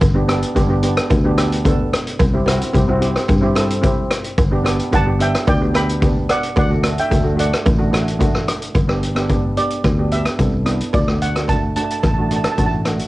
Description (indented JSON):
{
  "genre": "calypso",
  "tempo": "110 BPM",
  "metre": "4/4",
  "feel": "straight",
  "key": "G major",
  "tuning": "A4 = 441 Hz",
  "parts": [
    { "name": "fingered electric bass", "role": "bass", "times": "0.0-13.0 s", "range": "G1 to G2", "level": "-20 LUFS", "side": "equal", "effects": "none" },
    { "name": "street-band drum kit", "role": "drums", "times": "0.0-13.1 s", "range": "hi-hat, kick drum, rim click", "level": "-19 LUFS", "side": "equal", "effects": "cassette tape" },
    { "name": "cowbell", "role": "percussion", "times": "0.0-12.7 s", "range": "none", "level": "-27 LUFS", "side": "right 3 dB", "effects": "none" },
    { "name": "steel pan", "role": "accompaniment", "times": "0.1-13.1 s", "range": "A3 to A4", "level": "-22 LUFS", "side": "right 1 dB", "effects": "none" },
    { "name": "steel pan", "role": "melody", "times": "4.9-12.7 s", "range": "D5 to B5", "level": "-22 LUFS", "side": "right 2 dB", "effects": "cassette tape" }
  ],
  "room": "light reverb, small room ambience",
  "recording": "home recording on cassette, nothing above 10.7 kHz",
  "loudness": "-15 LUFS",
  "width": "side -18 dB against mid",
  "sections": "0.0-8.7 A section; 8.7-13.1 B section",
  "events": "none",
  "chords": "0.0 G; 2.2 C; 4.4 Gmaj7; 6.6 D; 8.7 G; 10.9 D",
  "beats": "| 0.01 0.56 1.10 1.65 | 2.20 2.74 3.29 3.83 | 4.38 4.92 5.47 6.02 | 6.56 7.11 7.65 8.20 | 8.75 9.29 9.84 10.39 | 10.94 11.49 12.04 12.58"
}